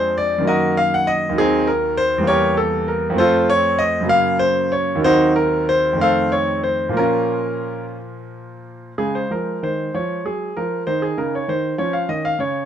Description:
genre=classical, baroque-style suite movement for grand piano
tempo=59-68 BPM (dotted quarters)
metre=6/8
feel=rubato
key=Bb minor, Db major from 9.0 s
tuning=A4 = 440 Hz
part: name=bright concert grand piano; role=solo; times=0.0-12.7 s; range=Eb2 to Gb5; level=-17 LUFS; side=equal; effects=none
room=light reverb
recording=dark, warm production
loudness=-16 LUFS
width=side -9 dB against mid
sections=0.0-9.0 A section; 9.0-12.7 A section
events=none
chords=0.5 Ebm/Gb; 1.4 Cdim/Eb; 2.3 Edim; 3.2 F; 4.1 Gb; 5.0 Cdim/Eb; 6.0 F7; 7.0 Bbm; 9.0 Db; 10.9 Bbm11; 11.8 Db

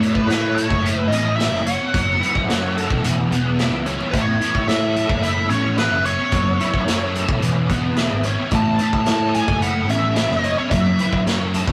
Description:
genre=psychedelic rock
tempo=109 BPM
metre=4/4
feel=straight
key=A major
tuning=A4 = 440 Hz
part: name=biting lead guitar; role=melody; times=0.0-11.2 s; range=B4 to A5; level=-25 LUFS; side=equal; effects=wah, overdrive
part: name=overdriven electric guitar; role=riff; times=0.0-11.7 s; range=E3 to C#5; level=-24 LUFS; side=equal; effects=rotary speaker
part: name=vintage drum kit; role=drums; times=0.0-11.7 s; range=hi-hat, kick drum, snare drum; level=-26 LUFS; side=equal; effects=none
part: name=picked electric bass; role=bass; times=0.3-11.7 s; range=E1 to A2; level=-25 LUFS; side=equal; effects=none
part: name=congas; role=percussion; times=0.6-11.7 s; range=none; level=-36 LUFS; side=equal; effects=none
room=moderate small room reverb, RT60 0.5 s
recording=rough rehearsal-room recording, warm saturation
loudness=-19 LUFS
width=mono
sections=0.0-11.7 A section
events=none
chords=0.0 A; 1.9 F#m7; 3.0 E5; 4.1 A; 6.3 F#m7; 7.4 E6; 8.5 F#m7

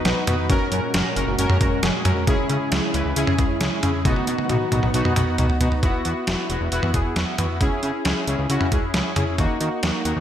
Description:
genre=synth-pop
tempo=135 BPM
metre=4/4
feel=straight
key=unclear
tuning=A4 = 442 Hz
part: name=analog synth brass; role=accompaniment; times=0.0-10.2 s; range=A#3 to B4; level=-24 LUFS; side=left 1 dB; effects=chorus
part: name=string machine, cellos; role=sustained chords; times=0.0-5.8 s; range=A#2 to F#4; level=-29 LUFS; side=right 1 dB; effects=ensemble chorus
part: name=fat analog bass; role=bass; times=0.1-10.2 s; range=E1 to D#3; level=-25 LUFS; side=equal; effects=none
part: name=detuned 8-bit digital drum machine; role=drums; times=0.1-10.2 s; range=hi-hat, kick drum, snare drum, toms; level=-22 LUFS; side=equal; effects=gated reverb
room=moderate lush hall reverb, RT60 1.6 s, digital ambience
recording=bright 1980s-style digital production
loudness=-19 LUFS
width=side -10 dB against mid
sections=0.0-5.8 A section; 5.8-10.2 B section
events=drum fill 4.1-5.8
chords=0.5 F#add9; 2.3 C#m; 4.1 B; 5.8 Esus2; 7.6 C#m; 9.4 D#m

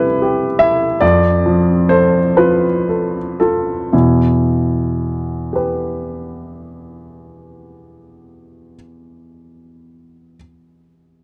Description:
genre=neoclassical minimalist piano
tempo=36-52 BPM (dotted quarters)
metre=6/8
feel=rubato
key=E phrygian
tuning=A4 = 443 Hz
part: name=warm baby grand piano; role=solo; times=0.0-11.2 s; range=E2 to E5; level=-16 LUFS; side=equal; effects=none
room=light reverb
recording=dry, close 1970s-style studio recording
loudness=-15 LUFS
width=mono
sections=0.0-3.9 A section; 3.9-10.3 B section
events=slowing down 0.0-3.9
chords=0.0 C; 1.0 F; 3.9 Em

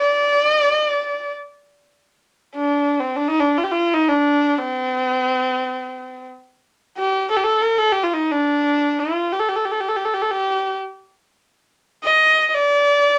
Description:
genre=persian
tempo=59 BPM (dotted quarters)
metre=6/8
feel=straight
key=D dastgah shur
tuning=A4 = 435 Hz
part: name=warm kamancheh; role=solo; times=0.0-13.2 s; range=C4 to Eb5+42c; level=-19 LUFS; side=equal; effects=none
room=moderate studio ambience, RT60 0.4 s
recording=none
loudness=-19 LUFS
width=mono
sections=0.0-2.0 A section; 2.0-13.2 B section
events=none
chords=none

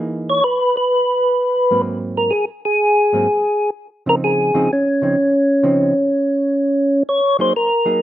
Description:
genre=jazz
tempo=127 BPM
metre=4/4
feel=swing 68% on 8ths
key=Db major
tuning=A4 = 441 Hz
part: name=hollow-body jazz guitar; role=accompaniment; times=0.0-8.0 s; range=G#2 to G#4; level=-22 LUFS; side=right 2 dB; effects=slapback echo
part: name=percussive tonewheel organ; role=melody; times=0.3-8.0 s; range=Db4 to Db5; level=-14 LUFS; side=equal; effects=slow rotary speaker
room=little or no reverb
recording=recorded outdoors, with no room sound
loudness=-14 LUFS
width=side -12 dB against mid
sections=0.0-7.5 A section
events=none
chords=0.0 Emaj7#11; 1.8 Ab9; 3.7 Dbmaj9

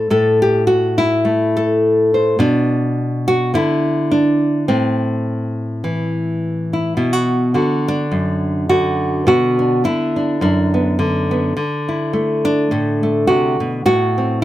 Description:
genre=folk, solo fingerstyle acoustic guitar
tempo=105 BPM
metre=4/4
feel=swing 56% on 8ths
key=unclear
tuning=A4 = 441 Hz
part: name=nylon-string guitar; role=solo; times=0.0-14.4 s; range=F#2 to C5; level=-14 LUFS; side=equal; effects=none
room=little or no reverb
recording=close, detailed microphones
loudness=-14 LUFS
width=side -14 dB against mid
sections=0.0-7.0 A section; 7.0-14.4 B section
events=none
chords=0.0 Am; 2.4 Bm; 4.7 Am; 7.0 Bm; 11.6 Dsus2; 13.9 Am

